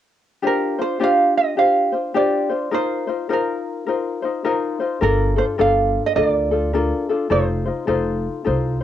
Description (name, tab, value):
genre	Hawaiian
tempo	105 BPM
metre	4/4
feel	swing 62% on 8ths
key	unclear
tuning	A4 = 439 Hz
part	ukulele	accompaniment	0.4-8.8 s	D4 to C5	-20 LUFS	left 4 dB	none
part	ukulele	melody	0.5-8.8 s	Bb4 to F5	-20 LUFS	right 5 dB	none
part	upright bass	bass	5.0-8.8 s	F1 to D2	-22 LUFS	right 1 dB	none
room	wet booth ambience, RT60 0.2 s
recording	home recording on cassette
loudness	-17 LUFS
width	side -11 dB against mid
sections	0.4-8.8 A section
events	none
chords	0.4 Ebmaj13/D (rootless); 2.7 F7sus4; 5.0 Gm9; 7.3 F7